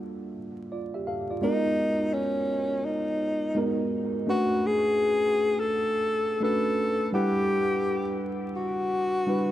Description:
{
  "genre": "R&B",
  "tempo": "84 BPM",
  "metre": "4/4",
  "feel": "swing 63% on 16ths",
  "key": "unclear",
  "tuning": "A4 = 440 Hz",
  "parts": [
    { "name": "tine electric piano", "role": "accompaniment", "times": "0.0-9.5 s", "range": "G3 to F#5", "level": "-28 LUFS", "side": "right 1 dB", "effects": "wide subtle chorus, dub echo" },
    { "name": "breathy tenor saxophone", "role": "melody", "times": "1.4-9.5 s", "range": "C#4 to A4", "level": "-26 LUFS", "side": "left 1 dB", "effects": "dub echo" }
  ],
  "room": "moderate echo chamber reverb, RT60 1.8 s, small room ambience",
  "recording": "echo-heavy mix, vinyl crackle",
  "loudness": "-24 LUFS",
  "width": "side -13 dB against mid",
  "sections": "0.0-1.4 A section; 1.4-9.5 B section",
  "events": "none",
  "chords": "0.0 Gm9; 1.4 G#m9; 4.3 Bm9; 7.1 Em9"
}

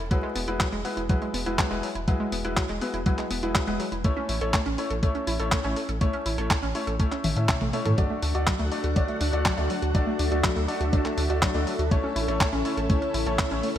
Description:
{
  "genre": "italo disco",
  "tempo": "122 BPM",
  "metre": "4/4",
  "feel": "straight",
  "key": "A major",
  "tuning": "A4 = 443 Hz",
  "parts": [
    { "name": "analog pluck", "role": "arpeggios", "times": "0.0-13.8 s", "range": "F#3 to E5", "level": "-31 LUFS", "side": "right 2 dB", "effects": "chorus, ping-pong delay" },
    { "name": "round analog bass", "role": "bass", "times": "0.0-13.8 s", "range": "E1 to A2", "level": "-29 LUFS", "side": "equal", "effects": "none" },
    { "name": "bright baby grand piano", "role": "stabs", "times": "0.1-13.7 s", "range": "G#3 to E5", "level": "-31 LUFS", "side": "left 3 dB", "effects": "ping-pong delay" },
    { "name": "clean 12-bit digital drum machine", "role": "drums", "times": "0.1-13.8 s", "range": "handclaps, hi-hat, toms", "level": "-30 LUFS", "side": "equal", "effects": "none" },
    { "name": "electronic kick drum", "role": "drums", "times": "0.1-13.5 s", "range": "none", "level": "-25 LUFS", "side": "equal", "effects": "none" },
    { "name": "string machine, full ensemble", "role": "sustained chords", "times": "8.2-13.8 s", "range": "C#4 to F#5", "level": "-30 LUFS", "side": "equal", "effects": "ensemble chorus" }
  ],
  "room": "moderate lush hall reverb, RT60 1.8 s",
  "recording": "bright 1980s-style digital production, vinyl crackle",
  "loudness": "-23 LUFS",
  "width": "side -11 dB against mid",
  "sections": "0.0-13.8 A section",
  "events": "drum fill 7.2-8.0",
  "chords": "0.1 Eadd9; 4.0 A; 8.0 D; 11.9 A"
}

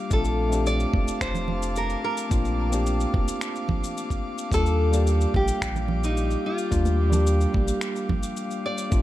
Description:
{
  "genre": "sunset chillout",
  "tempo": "109 BPM",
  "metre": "4/4",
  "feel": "straight",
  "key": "unclear",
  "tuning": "A4 = 439 Hz",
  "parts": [
    { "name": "tine electric piano", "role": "accompaniment", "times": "0.0-9.0 s", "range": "G3 to D5", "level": "-29 LUFS", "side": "moving between left 5 dB and right 2 dB", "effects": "auto-pan, ping-pong delay" },
    { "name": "airy breathy pad", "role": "sustained chords", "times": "0.0-9.0 s", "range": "A3 to D6", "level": "-33 LUFS", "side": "right 1 dB", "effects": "chorus, vintage 12-bit sampler grit" },
    { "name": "nylon-string guitar", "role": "melody", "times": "0.1-9.0 s", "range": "Eb4 to D5", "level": "-30 LUFS", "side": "left 1 dB", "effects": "digital delay" },
    { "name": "warm sub bass", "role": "bass", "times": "0.1-9.0 s", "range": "F1 to Eb2", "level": "-24 LUFS", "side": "equal", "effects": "none" },
    { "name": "electronic kick drum", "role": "drums", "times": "0.1-9.0 s", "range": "none", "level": "-25 LUFS", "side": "equal", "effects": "none" },
    { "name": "electronic shaker and finger snaps", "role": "drums", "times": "0.1-9.0 s", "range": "none", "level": "-36 LUFS", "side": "left 2 dB", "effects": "none" },
    { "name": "congas", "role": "percussion", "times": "0.9-8.2 s", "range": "none", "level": "-33 LUFS", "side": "right 4 dB", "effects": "none" }
  ],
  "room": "little or no reverb",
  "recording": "none",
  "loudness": "-22 LUFS",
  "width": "side -14 dB against mid",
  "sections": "0.0-8.9 A section",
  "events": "break 8.4-8.9",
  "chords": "0.1 Bbmaj7; 4.5 Ebmaj9"
}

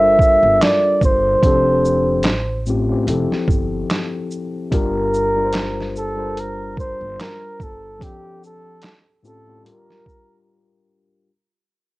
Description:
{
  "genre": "lo-fi hip hop",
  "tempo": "73 BPM",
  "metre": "4/4",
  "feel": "swing 56% on 16ths",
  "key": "G dorian",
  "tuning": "A4 = 438 Hz",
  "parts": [
    { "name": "mellow flugelhorn", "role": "melody", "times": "0.0-10.4 s", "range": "G4 to E5", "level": "-17 LUFS", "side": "right 1 dB", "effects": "low-pass filter, cassette tape" },
    { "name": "mellow tine electric piano", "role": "accompaniment", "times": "0.0-11.3 s", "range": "A2 to C5", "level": "-22 LUFS", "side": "left 3 dB", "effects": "medium stereo tremolo, cassette tape, low-pass filter" },
    { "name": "upright bass", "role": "bass", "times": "0.0-8.0 s", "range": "F1 to A1", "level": "-27 LUFS", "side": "right 1 dB", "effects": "none" },
    { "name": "lo-fi sampler-style drum kit", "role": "drums", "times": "0.2-10.3 s", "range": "handclaps, hi-hat, kick drum, shaker, snare drum", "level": "-20 LUFS", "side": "right 1 dB", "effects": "none" }
  ],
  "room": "wet studio reverb, RT60 0.6 s",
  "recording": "home recording on cassette",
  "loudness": "-15 LUFS",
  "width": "side -20 dB against mid",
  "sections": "0.0-11.3 A section",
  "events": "fade-out 0.0-11.3; break 8.0-11.3",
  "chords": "0.0 Gm9; 1.4 F69; 2.2 A7alt; 3.1 Fmaj9; 4.7 Gm7; 8.0 F69; 8.8 A7alt; 9.6 Gm7"
}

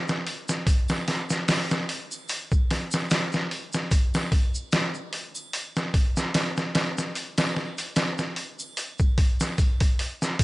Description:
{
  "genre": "trip hop",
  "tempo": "74 BPM",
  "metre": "4/4",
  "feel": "swing 56% on 16ths",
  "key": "none",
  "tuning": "none",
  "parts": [
    { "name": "trip hop sampler-style drum kit", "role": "drums", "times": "0.1-10.4 s", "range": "hi-hat, kick drum, snare drum", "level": "-23 LUFS", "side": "equal", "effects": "overdrive, small room ambience" },
    { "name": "tube shaker and triangle", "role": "percussion", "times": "0.1-10.4 s", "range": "none", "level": "-38 LUFS", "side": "right 1 dB", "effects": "none" }
  ],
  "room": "digital ambience",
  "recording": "nothing above 10.9 kHz",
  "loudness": "-23 LUFS",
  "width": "side -20 dB against mid",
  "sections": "0.0-10.4 A section",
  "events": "none",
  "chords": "none"
}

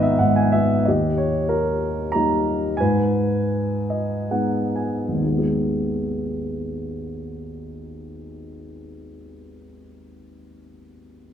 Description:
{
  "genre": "classical, lyrical solo piano",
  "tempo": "59-95 BPM",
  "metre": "3/4",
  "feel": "rubato",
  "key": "G# minor",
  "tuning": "A4 = 440 Hz",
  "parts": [
    { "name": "dark baby grand piano", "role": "solo", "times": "0.0-11.3 s", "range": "G#1 to A#5", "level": "-20 LUFS", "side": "equal", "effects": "none" }
  ],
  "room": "moderate recital hall reverb, RT60 1.6 s",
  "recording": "minimal, uncompressed stereo recording",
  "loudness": "-19 LUFS",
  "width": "side -9 dB against mid",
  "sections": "0.9-5.2 A section; 5.2-11.0 B section",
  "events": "grand piano fill 0.0-0.9, 3.5-5.2; slowing down 0.9-5.2",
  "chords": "0.0 G#m; 0.9 D#; 2.8 G#m"
}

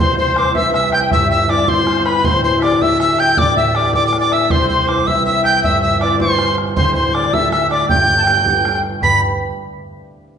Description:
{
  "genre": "celtic folk, Celtic jig",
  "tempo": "106 BPM (dotted quarters)",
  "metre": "6/8",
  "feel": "straight",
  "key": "G major",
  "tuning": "A4 = 440 Hz",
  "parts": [
    { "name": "tin whistle", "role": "melody", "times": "0.0-9.2 s", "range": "B5 to B6", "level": "-16 LUFS", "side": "right 1 dB", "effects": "none" },
    { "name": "musette accordion", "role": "second line", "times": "0.0-9.2 s", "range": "B4 to B5", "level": "-19 LUFS", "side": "left 3 dB", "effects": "none" },
    { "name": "concert harp", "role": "accompaniment", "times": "0.0-9.2 s", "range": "D1 to A5", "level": "-19 LUFS", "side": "equal", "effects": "none" },
    { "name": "bodhran", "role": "percussion", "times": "0.1-9.2 s", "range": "none", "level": "-21 LUFS", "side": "right 2 dB", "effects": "none" }
  ],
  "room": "wet recital hall reverb, RT60 1.6 s",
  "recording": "recorded in a church or concert hall, nothing above 10.7 kHz",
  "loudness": "-12 LUFS",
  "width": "side -7 dB against mid",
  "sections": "0.0-9.0 A section; 9.0-10.2 B section",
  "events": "none",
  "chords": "0.0 Cmaj7; 2.2 Dsus4; 4.5 Cmaj7; 6.8 Dsus4; 7.9 Gadd9"
}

